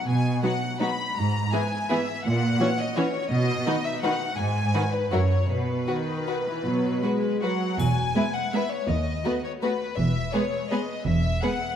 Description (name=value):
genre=classical, orchestral ballroom waltz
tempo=145-180 BPM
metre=3/4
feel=rubato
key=B major, E major from 7.8 s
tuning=A4 = 440 Hz
part: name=clear studio violin section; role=melody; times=0.0-11.8 s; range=B4 to B5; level=-29 LUFS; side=left 4 dB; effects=none
part: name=warm studio cello section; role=bass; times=0.1-11.4 s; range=D#2 to B2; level=-26 LUFS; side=right 2 dB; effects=none
part: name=rich studio violin section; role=second line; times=0.4-11.5 s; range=D#4 to C#5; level=-32 LUFS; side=left 3 dB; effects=none
part: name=rich studio viola section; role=accompaniment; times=0.4-11.5 s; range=D#3 to E4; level=-29 LUFS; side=right 1 dB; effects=none
part: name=dark studio double bass section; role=bass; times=7.8-11.4 s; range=E1 to D#2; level=-28 LUFS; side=right 1 dB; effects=none
part: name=triangle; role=percussion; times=7.8-8.5 s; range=none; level=-42 LUFS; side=left 3 dB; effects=none
room=moderate scoring stage reverb, RT60 1.9 s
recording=dark, warm production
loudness=-23 LUFS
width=side -9 dB against mid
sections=0.0-7.8 A section; 7.8-11.8 B section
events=none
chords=0.0 B5; 1.2 E/G#; 2.2 F#7/A#; 3.3 B; 4.4 G#m; 5.1 F#7; 5.5 B; 7.8 E; 8.9 B7/D#; 10.0 E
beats=| 0.07 0.43 0.81 | 1.16 1.52 1.90 | 2.25 2.60 2.97 | 3.32 3.67 4.03 | 4.38 4.74 5.12 | 5.48 5.87 6.28 | 6.65 7.03 7.43 | 7.80 8.16 8.54 | 8.89 9.25 9.63 | 9.98 10.34 10.72 | 11.07 11.44